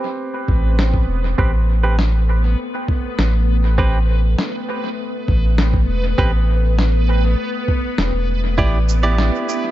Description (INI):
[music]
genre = ambient dub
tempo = 100 BPM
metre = 4/4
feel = straight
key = A minor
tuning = A4 = 443 Hz
[part]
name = deep dark ambient pad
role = sustained chords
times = 0.3-9.7 s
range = A3 to G5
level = -30 LUFS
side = left 4 dB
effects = chorus, built-in reverb
[part]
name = direct-recorded clean electric guitar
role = stabs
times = 0.0-9.7 s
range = C4 to D5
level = -24 LUFS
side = right 3 dB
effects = low-pass filter, dub echo
[part]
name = backwards swelling texture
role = texture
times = 0.0-9.7 s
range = B3 to B4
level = -27 LUFS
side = equal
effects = built-in reverb
[part]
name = warm sub bass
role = bass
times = 0.5-9.3 s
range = E1 to A1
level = -16 LUFS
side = equal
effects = none
[part]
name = electronic kick drum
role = drums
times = 0.5-8.7 s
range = none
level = -19 LUFS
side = equal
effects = overdrive
[part]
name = electronic snare drum and shaker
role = drums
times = 0.8-9.6 s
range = none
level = -25 LUFS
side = equal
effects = overdrive, dub echo
[sound]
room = digital ambience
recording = nothing above 7.6 kHz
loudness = -15 LUFS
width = side -14 dB against mid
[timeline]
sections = 0.0-9.7 A section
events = fade-in on ambient pad 0.0-9.7; filter sweep on clean electric guitar 0.0-9.7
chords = 0.0 Am9; 8.6 Em7